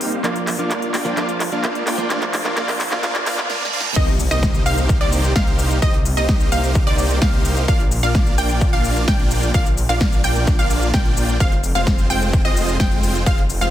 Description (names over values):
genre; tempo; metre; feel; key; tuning
EDM, festival progressive house; 129 BPM; 4/4; straight; C minor; A4 = 440 Hz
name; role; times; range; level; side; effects
direct-recorded clean electric guitar; accompaniment; 0.0-3.5 s; F3 to F4; -27 LUFS; right 2 dB; sidechain pumping, dub echo
supersaw chords; riff; 0.0-13.7 s; Ab3 to G5; -23 LUFS; right 1 dB; sidechain pumping, low-pass filter, dub echo
big-room dance drum kit; drums; 0.0-13.7 s; crash cymbal, handclaps, hi-hat, shaker, snare drum; -24 LUFS; equal; overdrive
riser, reverse cymbal and impact; sound effects; 0.8-5.8 s; none; -29 LUFS; right 1 dB; none
wide unison pluck; arpeggios; 4.0-13.7 s; D5 to G5; -24 LUFS; right 1 dB; sidechain pumping, dub echo
detuned saw bass; bass; 4.0-13.7 s; F1 to C2; -21 LUFS; equal; sidechain pumping
electronic kick drum; drums; 4.0-13.4 s; none; -18 LUFS; equal; overdrive
room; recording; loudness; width
light reverb; dense, heavily limited modern master, high-pass filter; -16 LUFS; side -12 dB against mid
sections
0.0-4.0 A section; 4.0-13.7 B section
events
build-up 0.0-4.0; drum fill 0.0-3.5, 3.5-4.0; filter sweep on supersaw synth 0.0-4.0; filter sweep 0.0-4.0; reverse cymbal 3.0-4.0; drop 4.0-13.7; impact 4.0-5.8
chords
0.2 Bb; 4.0 Cm7; 7.7 Bb; 11.4 Fm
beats
| 0.24 0.71 1.17 1.64 | 2.10 2.57 3.03 3.50 | 3.96 4.43 4.89 5.36 | 5.82 6.29 6.75 7.22 | 7.68 8.15 8.61 9.08 | 9.54 10.01 10.47 10.94 | 11.40 11.87 12.33 12.80 | 13.27